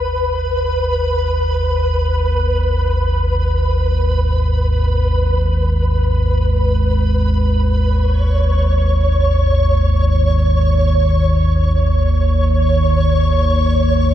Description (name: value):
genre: dark ambient drone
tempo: free time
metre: none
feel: none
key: G# minor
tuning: A4 = 442 Hz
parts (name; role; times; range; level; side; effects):
- deep rumbling drone; drone; 0.0-14.1 s; G#1 to D#2; -14 LUFS; equal; built-in reverb, lush chorus
- flickering grainy texture; texture; 0.0-14.1 s; B4 to C#5; -20 LUFS; equal; built-in reverb
room: light reverb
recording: none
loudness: -13 LUFS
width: side -11 dB against mid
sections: 0.0-14.1 A section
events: none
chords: 0.0 G#m